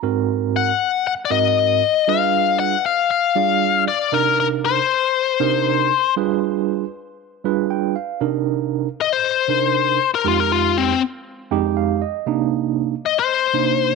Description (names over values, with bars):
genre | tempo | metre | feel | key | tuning
blues | 118 BPM | 4/4 | straight | C minor | A4 = 438 Hz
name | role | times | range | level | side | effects
tine electric piano | accompaniment | 0.0-13.9 s | F2 to G5 | -20 LUFS | right 12 dB | medium tremolo
biting lead guitar | melody | 0.6-13.9 s | C4 to Gb5 | -17 LUFS | left 11 dB | overdrive
room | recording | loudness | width
moderate spring reverb, RT60 2.5 s | 1960s-style stereo with parts hard left and right | -17 LUFS | side -4 dB against mid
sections
0.0-8.2 A section; 8.2-13.9 B section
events
tine electric piano fill 7.4-8.2, 11.3-12.3; lead electric guitar solo 8.2-13.9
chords
0.0 Ab7; 2.1 G7b9; 4.1 Cm7; 6.2 G7b9; 8.2 Cm7; 10.2 Fm7; 12.3 Cm7